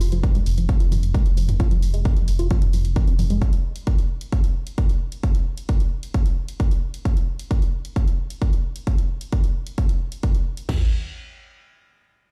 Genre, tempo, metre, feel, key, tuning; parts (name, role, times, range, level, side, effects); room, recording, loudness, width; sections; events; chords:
driving peak-time techno; 132 BPM; 4/4; straight; F minor; A4 = 440 Hz
tight sequenced synth; riff; 0.0-3.4 s; F3 to F4; -32 LUFS; equal; chorus, sidechain pumping, dub echo
saturated sub bass; bass; 0.0-3.4 s; F1; -24 LUFS; equal; tube saturation, sidechain pumping, low-pass filter
punchy analog drum machine; drums; 0.0-10.7 s; hi-hat, toms; -35 LUFS; equal; sidechain pumping on hats, sidechain pumping on toms, sidechain pumping on perc
techno drum kit; drums; 0.2-10.8 s; crash cymbal, kick drum, toms; -23 LUFS; equal
digital ambience; played on a big sound system in a bare room, stone room reverb; -22 LUFS; mono
0.0-10.7 A section; 10.7-12.3 B section
filter sweep on synth arpeggio sound 0.0-3.4